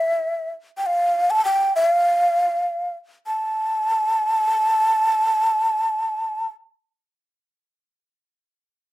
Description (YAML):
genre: andean folk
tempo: free time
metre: none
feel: none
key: unclear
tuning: A4 = 440 Hz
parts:
  - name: breathy mellow large quena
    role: solo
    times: 0.0-6.5 s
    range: E5 to A5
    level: -18 LUFS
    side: equal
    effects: none
room: moderate small room reverb, RT60 0.5 s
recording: rough home demo mix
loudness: -18 LUFS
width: side -16 dB against mid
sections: 0.0-3.3 A section; 3.3-5.7 B section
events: none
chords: none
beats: free time